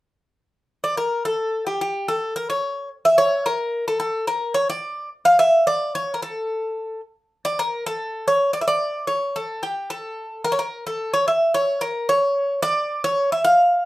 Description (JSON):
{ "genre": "greek folk", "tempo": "109 BPM", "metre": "2/4", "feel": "straight", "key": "unclear", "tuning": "A4 = 443 Hz", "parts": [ { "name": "Greek bouzouki", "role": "solo", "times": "0.8-13.8 s", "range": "G4 to F5", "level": "-19 LUFS", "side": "equal", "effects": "none" } ], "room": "wet studio ambience, RT60 0.5 s", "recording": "rough home demo mix", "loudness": "-19 LUFS", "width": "side -17 dB against mid", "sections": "0.8-9.6 A section; 9.6-13.9 B section", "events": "none", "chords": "none", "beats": "| 0.84 1.39 | 1.94 2.49 | 3.04 3.60 | 4.15 4.70 | 5.25 5.80 | 6.35 6.90 | 7.45 8.00 | 8.54 9.09 | 9.64 10.19 | 10.73 11.28 | 11.82 12.37 | 12.91 13.46" }